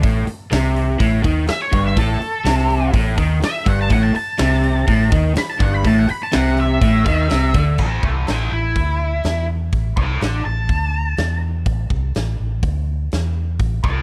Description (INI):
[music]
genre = blues rock power trio and southern rock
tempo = 124 BPM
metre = 4/4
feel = straight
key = unclear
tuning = A4 = 441 Hz
[part]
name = crunchy overdriven guitar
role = riff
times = 0.0-7.8 s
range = G2 to Eb3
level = -21 LUFS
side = equal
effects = none
[part]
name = vintage muted fingered electric bass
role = bass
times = 0.0-14.0 s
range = G1 to E2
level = -22 LUFS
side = equal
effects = none
[part]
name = big rock drum kit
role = drums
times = 0.0-13.9 s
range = crash cymbal, hi-hat, kick drum, snare drum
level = -24 LUFS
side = equal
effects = none
[part]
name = octave-fuzz lead guitar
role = melody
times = 1.5-14.0 s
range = C#4 to B5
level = -25 LUFS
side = equal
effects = wah, distortion
[sound]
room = little or no reverb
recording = dry, close 1970s-style studio recording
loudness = -18 LUFS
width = mono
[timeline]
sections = 0.0-7.8 A section; 7.8-14.0 B section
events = lead electric guitar solo 0.0-7.8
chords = 0.0 Cm6/G; 7.8 A5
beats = | 0.04 0.52 1.00 1.49 | 1.97 2.46 2.94 3.43 | 3.91 4.39 4.88 5.36 | 5.85 6.33 6.82 7.30 | 7.79 8.27 8.76 9.24 | 9.72 10.21 10.69 11.18 | 11.66 12.15 12.63 13.11 | 13.60